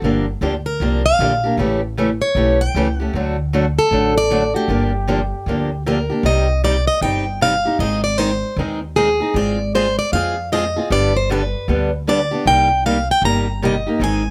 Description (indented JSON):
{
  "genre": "acoustic string swing (jazz manouche)",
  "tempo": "154 BPM",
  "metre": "4/4",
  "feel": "swing 62% on 8ths",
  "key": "G minor, C minor from 6.2 s",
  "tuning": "A4 = 440 Hz",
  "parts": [
    { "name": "picked steel-string acoustic guitar", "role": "accompaniment", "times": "0.0-14.2 s", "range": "C3 to Ab4", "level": "-22 LUFS", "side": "equal", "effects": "none" },
    { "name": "upright bass", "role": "bass", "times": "0.0-14.3 s", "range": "G1 to F2", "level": "-24 LUFS", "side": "equal", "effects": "none" },
    { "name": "picked plugged-in steel-string acoustic guitar", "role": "melody", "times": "0.7-14.3 s", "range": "G4 to Bb5", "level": "-21 LUFS", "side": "equal", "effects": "plate reverb" }
  ],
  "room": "moderate club ambience, RT60 0.5 s",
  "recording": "none",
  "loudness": "-18 LUFS",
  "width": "mono",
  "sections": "0.0-6.2 A section; 6.2-14.3 B section",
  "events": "none",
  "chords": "0.0 Gm7; 1.6 A7; 3.1 D; 4.7 Gm7; 6.2 Cm; 7.8 Ab; 9.3 Fm/Ab; 10.9 G; 12.5 Cm7"
}